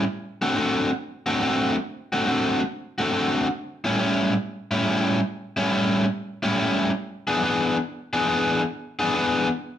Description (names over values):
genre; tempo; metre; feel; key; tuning
blues; 140 BPM; 4/4; swing 66% on 8ths; A mixolydian; A4 = 444 Hz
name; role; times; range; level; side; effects
crunchy overdriven guitar; solo; 0.0-9.5 s; A2 to G#4; -22 LUFS; left 1 dB; none
room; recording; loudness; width
moderate large studio reverb, RT60 0.9 s; band playing live in one room; -22 LUFS; side -10 dB against mid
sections
0.0-9.8 A section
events
none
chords
0.1 D7; 3.6 A7; 7.0 E7